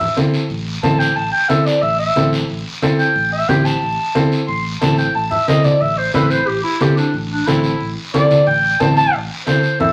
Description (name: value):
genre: latin, cumbia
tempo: 181 BPM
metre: 4/4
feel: straight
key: A minor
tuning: A4 = 440 Hz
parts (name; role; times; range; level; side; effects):
- clear clarinet; melody; 0.0-9.9 s; D4 to C6; -19 LUFS; equal; none
- congas; percussion; 0.0-9.9 s; none; -21 LUFS; equal; none
- clear upright piano; accompaniment; 0.2-9.9 s; C4 to C5; -22 LUFS; equal; none
- guiro; percussion; 0.2-9.9 s; none; -30 LUFS; equal; none
- fingered electric bass; bass; 0.5-9.9 s; A1 to E2; -28 LUFS; equal; none
room: wet studio reverb, RT60 0.7 s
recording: vinyl crackle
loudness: -16 LUFS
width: mono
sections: 0.0-9.1 A section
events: clarinet solo 0.0-9.1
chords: 0.0 Am